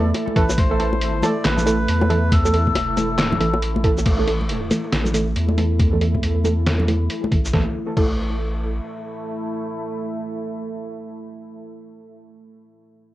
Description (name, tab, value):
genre	deep dubstep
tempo	138 BPM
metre	4/4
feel	swing 61% on 16ths, half-time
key	unclear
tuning	A4 = 444 Hz
part	melodica	melody	0.0-3.6 s	A4 to D5	-26 LUFS	left 2 dB	dub echo
part	deep dark ambient pad	sustained chords	0.0-11.7 s	A3 to E4	-28 LUFS	right 1 dB	chorus, built-in reverb, cassette tape
part	filtered dub chord stab	stabs	0.0-12.1 s	E3 to A4	-24 LUFS	right 2 dB	chorus, cassette tape, dub echo
part	saturated sub bass	bass	0.0-8.8 s	E1 to E2	-22 LUFS	equal	none
part	trip hop sampler-style drum kit	drums	0.1-8.1 s	crash cymbal, handclaps, hi-hat, shaker, snare drum	-26 LUFS	equal	cassette tape
part	bongos and congas	percussion	0.1-7.3 s	none	-27 LUFS	left 2 dB	dub echo
part	electronic kick drum	drums	0.4-8.1 s	none	-20 LUFS	equal	cassette tape
room	light reverb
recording	home recording on cassette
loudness	-18 LUFS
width	side -15 dB against mid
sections	0.0-4.1 A section; 4.1-7.5 B section; 7.5-11.0 C section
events	drop 0.0-4.1; filter sweep on synth stab 4.1-7.5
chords	0.0 A5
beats	0.14 | 0.58 1.01 1.45 1.88 | 2.32 2.75 3.19 3.62 | 4.06 4.49 4.93 5.36 | 5.80 6.23 6.67 7.10 | 7.54 7.97 8.40 8.84 | 9.28 9.71 10.14 10.58